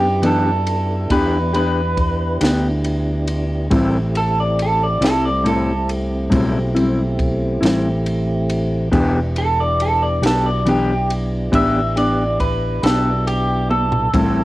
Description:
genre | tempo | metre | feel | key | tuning
slow blues | 46 BPM (dotted quarters) | 12/8 | straight | E minor | A4 = 444 Hz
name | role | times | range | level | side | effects
electric guitar through a small old amp | melody | 0.0-14.4 s | G4 to E5 | -20 LUFS | right 1 dB | lush chorus, cassette tape
mellow electric guitar | accompaniment | 0.0-14.4 s | A2 to G4 | -18 LUFS | left 1 dB | harmonic tremolo, cassette tape
tonewheel organ | sustained chords | 0.0-14.4 s | A3 to G4 | -26 LUFS | right 1 dB | slow rotary speaker, overdrive, cassette tape
fingered electric bass | bass | 0.0-14.4 s | E1 to F#2 | -21 LUFS | equal | none
compact cocktail drum kit | drums | 0.2-14.3 s | kick drum, ride cymbal, snare drum, toms | -26 LUFS | equal | cassette tape
room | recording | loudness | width
light reverb | home recording on cassette | -16 LUFS | side -17 dB against mid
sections
0.0-14.4 A section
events
clean electric guitar solo 0.0-14.4; drum fill 13.7-14.1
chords
0.0 Em7; 3.7 Am7; 8.9 Em7

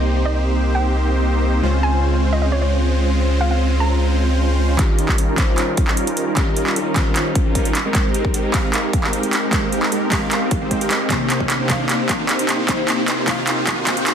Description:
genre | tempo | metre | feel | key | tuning
future bass | 152 BPM | 4/4 | half-time | unclear | A4 = 440 Hz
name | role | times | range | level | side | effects
glassy digital keys | accompaniment | 0.0-14.1 s | C3 to F5 | -25 LUFS | left 2 dB | chorus, sidechain pumping, digital delay
supersaw chords | riff | 0.0-14.1 s | G3 to C5 | -22 LUFS | right 1 dB | sidechain pumping, low-pass filter, digital delay
saturated sub bass | bass | 0.0-4.8 s | C2 to Db2 | -18 LUFS | equal | sidechain pumping
hollow square pluck | melody | 0.3-4.2 s | Db5 to Bb5 | -26 LUFS | right 1 dB | chorus, sidechain pumping, ping-pong delay
big-room dance drum kit | drums | 4.8-14.1 s | handclaps, hi-hat | -21 LUFS | right 1 dB | studio reverb
electronic kick drum | drums | 4.8-14.0 s | none | -20 LUFS | equal | studio reverb
riser | sound effects | 8.3-14.1 s | none | -29 LUFS | right 1 dB | none
room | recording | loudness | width
light reverb, digital ambience | dense, heavily limited modern master, high-pass filter | -16 LUFS | side -8 dB against mid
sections
0.0-4.8 A section; 4.8-14.1 B section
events
build-up 4.8-14.1; drum fill 4.8-14.1; filter sweep on supersaw synth 4.8-14.1; filter sweep 4.8-14.1; riser 8.3-14.1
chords
0.0 Cm7; 1.6 Dbmaj7; 4.8 Eb9; 7.8 Abmaj9; 11.1 Cm7

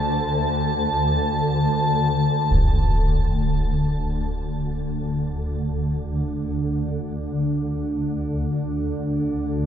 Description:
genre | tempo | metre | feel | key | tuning
dark ambient drone | free time | none | none | unclear | A4 = 440 Hz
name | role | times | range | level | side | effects
sweeping resonant pad | sustained chords | 0.0-9.7 s | D3 to D4 | -30 LUFS | right 2 dB | chorus, shimmer reverb
swarming drone | drone | 0.0-9.7 s | D2 to D3 | -23 LUFS | equal | built-in reverb
icy glass pad | texture | 0.0-2.6 s | A5 | -26 LUFS | left 1 dB | chorus, built-in reverb, shimmer reverb
concert bass drum | percussion | 2.5-2.8 s | none | -23 LUFS | equal | low-pass filter on kick
room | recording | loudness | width
moderate huge ambient reverb, RT60 9.0 s | dark, warm production | -21 LUFS | side -9 dB against mid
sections
0.0-2.5 A section; 2.5-9.7 B section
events
none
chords
0.0 D5

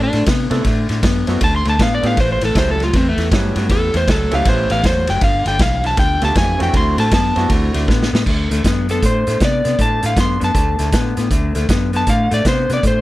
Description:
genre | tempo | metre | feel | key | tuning
electric blues shuffle | 158 BPM | 4/4 | swing 64% on 8ths | D mixolydian | A4 = 439 Hz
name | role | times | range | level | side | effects
electric slide guitar | melody | 0.0-13.0 s | A3 to C6 | -19 LUFS | equal | plate reverb
electric guitar through a small old amp | riff | 0.0-13.0 s | G2 to B3 | -21 LUFS | left 3 dB | spring reverb
vintage muted fingered electric bass | bass | 0.0-13.0 s | F#1 to C3 | -20 LUFS | equal | none
vintage drum kit | drums | 0.1-12.9 s | crash cymbal, hi-hat, kick drum, ride cymbal, snare drum | -18 LUFS | equal | none
warm upright piano | accompaniment | 0.5-7.9 s | A3 to A4 | -24 LUFS | right 4 dB | plate reverb
room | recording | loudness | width
light reverb | none | -14 LUFS | side -16 dB against mid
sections
0.0-8.3 A section; 8.3-13.0 B section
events
electric slide guitar solo 0.0-8.3; drum fill 7.9-8.3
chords
0.0 D9; 2.2 A9; 5.2 G9; 6.7 D9; 8.3 D7

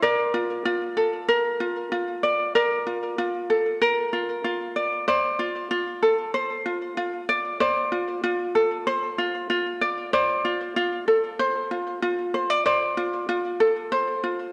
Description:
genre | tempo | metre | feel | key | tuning
folktronica | 95 BPM | 4/4 | straight | F major | A4 = 444 Hz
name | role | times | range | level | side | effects
ukulele | solo | 0.0-14.5 s | F4 to D5 | -24 LUFS | equal | vintage 12-bit sampler grit, digital delay
room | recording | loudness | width
moderate scoring stage reverb, RT60 1.8 s | none | -25 LUFS | mono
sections
0.0-14.5 A section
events
none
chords
0.0 Bbmaj7/F; 5.1 F6

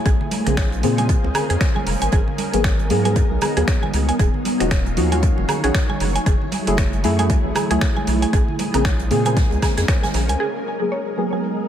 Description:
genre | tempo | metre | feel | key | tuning
deep house | 116 BPM | 4/4 | swing 58% on 16ths | unclear | A4 = 440 Hz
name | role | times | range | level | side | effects
soft string machine | sustained chords | 0.0-11.7 s | F#3 to E#5 | -29 LUFS | equal | ensemble chorus, sidechain pumping
granular cloud pad | texture | 0.0-11.7 s | A3 to G#5 | -28 LUFS | equal | built-in reverb, sidechain pumping
mallet-like synth pluck | arpeggios | 0.1-11.4 s | G#4 to G#5 | -27 LUFS | right 2 dB | chorus, sidechain pumping, analog delay
round analog bass | bass | 0.1-10.4 s | D#1 to A#2 | -22 LUFS | equal | none
dusty soul sampler-style drum kit | drums | 0.1-10.5 s | crash cymbal, finger snaps, hi-hat, woodblock | -28 LUFS | right 2 dB | overdrive, low-pass filter on hats, small room reverb, low-pass filter on snare, low-pass filter on perc, low-pass filter on cymbals, analog delay
electronic kick drum | drums | 0.1-10.0 s | none | -19 LUFS | equal | overdrive, small room reverb
swinging big-band drum kit | drums | 0.1-11.6 s | hi-hat, snare drum | -35 LUFS | right 2 dB | high-pass filter on hats, low-pass filter on hats, small room reverb, high-pass filter on snare, low-pass filter on snare, high-pass filter on room, low-pass filter on room, analog delay
congas | percussion | 0.2-10.1 s | none | -31 LUFS | right 5 dB | none
deep mellow chord stab | stabs | 0.5-11.7 s | C#3 to G#4 | -23 LUFS | equal | chorus, sidechain pumping, analog delay
soft string machine | texture | 10.4-11.7 s | G#4 to G#5 | -36 LUFS | left 2 dB | none
room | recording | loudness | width
light reverb | echo-heavy mix | -17 LUFS | side -10 dB against mid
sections
0.0-10.4 A section; 10.4-11.7 B section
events
filter sweep on synth arpeggio sound 10.4-11.7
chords
0.1 A#m9; 2.1 G#m9; 4.2 D#m9; 6.0 F#m9; 8.3 A#m9; 10.4 G#m9

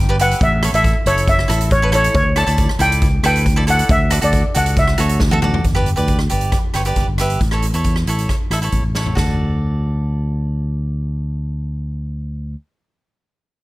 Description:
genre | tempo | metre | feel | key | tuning
calypso | 137 BPM | 4/4 | straight | D major | A4 = 439 Hz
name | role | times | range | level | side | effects
steel pan | melody | 0.0-5.4 s | C#5 to A5 | -18 LUFS | equal | plate reverb
fingered electric bass | bass | 0.0-12.5 s | F#1 to E2 | -18 LUFS | equal | none
cavaquinho | accompaniment | 0.1-12.6 s | E4 to E5 | -23 LUFS | right 1 dB | plate reverb
street-band drum kit | drums | 0.2-9.3 s | hi-hat, kick drum, rim click, snare drum, toms | -19 LUFS | equal | none
room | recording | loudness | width
light reverb | none | -14 LUFS | side -19 dB against mid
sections
0.0-5.6 A section; 5.6-9.2 B section; 9.2-12.7 C section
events
drum fill 5.2-5.6, 8.9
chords
0.4 A; 2.2 Dsus2; 3.9 Dadd9; 5.6 G; 7.4 A; 9.2 D

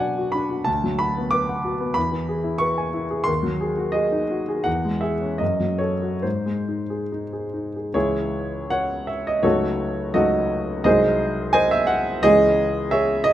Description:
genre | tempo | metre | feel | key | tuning
classical, romantic character piece for solo piano | 68-96 BPM | 2/4 | rubato | C# minor | A4 = 440 Hz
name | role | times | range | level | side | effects
clear grand piano | solo | 0.0-13.3 s | B#1 to D6 | -20 LUFS | equal | none
room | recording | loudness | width
moderate recital hall reverb, RT60 1.6 s | close, detailed microphones | -20 LUFS | side -12 dB against mid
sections
0.0-7.9 A section; 7.9-13.3 B section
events
none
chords
0.0 Bm; 0.7 Bm/D; 2.0 E; 3.3 G#7/D#; 4.7 C#m/E; 5.4 F#m; 6.2 G#; 7.9 C#m; 9.4 D#m7b5/C#; 10.9 G#7/B#; 12.2 C#m

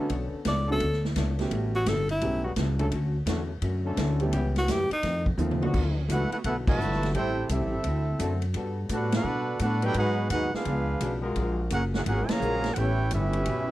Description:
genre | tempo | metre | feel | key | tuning
jazz, big band swing | 171 BPM | 4/4 | swing 65% on 8ths | B minor, D major from 5.7 s | A4 = 438 Hz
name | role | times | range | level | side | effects
clear grand piano | accompaniment | 0.0-5.7 s | D3 to A4 | -32 LUFS | right 3 dB | none
clear trombone section | sustained chords | 0.0-12.9 s | C#3 to B4 | -34 LUFS | left 2 dB | none
archtop guitar, miked and amplified | accompaniment | 0.1-13.7 s | F2 to C#5 | -37 LUFS | left 5 dB | none
upright bass | bass | 0.1-13.7 s | F#1 to B2 | -28 LUFS | equal | none
swinging big-band drum kit | drums | 0.1-13.6 s | crash cymbal, hi-hat, kick drum, ride cymbal, snare drum, toms | -31 LUFS | equal | none
clear tenor saxophone | melody | 0.5-2.4, 4.6-5.2 s | D#4 to D5 | -27 LUFS | equal | none
warm trumpet section | melody | 6.1-13.7 s | C4 to A#5 | -30 LUFS | right 1 dB | none
clear trombone section | second line | 6.1-13.7 s | B2 to G4 | -33 LUFS | right 4 dB | none
room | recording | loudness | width
little or no reverb | none | -24 LUFS | side -15 dB against mid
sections
0.0-5.7 A section; 5.7-13.7 B section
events
tenor saxophone solo 0.0-5.7; drum fill 5.4-5.7; band accent 6.6, 9.1, 12.2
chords
0.1 Bm9; 1.5 A13; 2.9 Dmaj7; 4.3 C#m7b5; 5.0 F7; 5.7 D69; 7.1 Am7; 7.8 D7; 8.5 Gmaj9; 9.9 G#m7; 10.7 C#7b9; 11.4 F#maj9; 12.8 A9

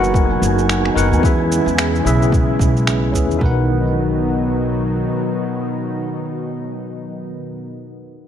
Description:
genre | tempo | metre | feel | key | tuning
sunset chillout | 110 BPM | 4/4 | swing 57% on 16ths | B major | A4 = 439 Hz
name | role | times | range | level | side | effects
bell-like tine electric piano | accompaniment | 0.0-8.3 s | C#4 to F#5 | -22 LUFS | left 1 dB | medium stereo tremolo, auto-pan, low-pass filter, digital delay
lush unison pad | sustained chords | 0.0-7.4 s | B2 to F#4 | -21 LUFS | equal | chorus
upright bass | bass | 0.0-5.0 s | F#1 to E2 | -19 LUFS | equal | tube saturation
electronic cabasa and finger snaps | drums | 0.0-3.4 s | none | -23 LUFS | right 1 dB | studio reverb
wind-like tuned noise texture | texture | 0.0-3.4 s | G#4 to G#5 | -28 LUFS | right 3 dB | built-in reverb
electronic kick drum | drums | 0.1-3.5 s | none | -18 LUFS | equal | studio reverb
room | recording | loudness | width
light reverb | dark, warm production | -15 LUFS | side -9 dB against mid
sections
0.0-3.4 A section; 3.4-7.8 B section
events
filter sweep on upright bass 0.0-3.4; filter sweep on tine electric piano 0.0-3.4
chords
0.0 Bmaj7; 1.2 E6; 3.4 Bmaj7

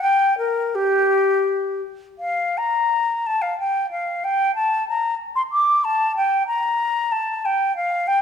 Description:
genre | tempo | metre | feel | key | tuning
classical, baroque-style fantasia for unaccompanied flute | 78-94 BPM | 3/4 | rubato | G minor | A4 = 440 Hz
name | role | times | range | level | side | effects
mellow concert flute | solo | 0.0-8.2 s | G4 to D6 | -18 LUFS | left 1 dB | none
room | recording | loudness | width
moderate recital hall reverb, RT60 1.5 s | none | -18 LUFS | side -7 dB against mid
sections
0.0-2.2 A section; 2.2-8.2 A section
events
none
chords
none

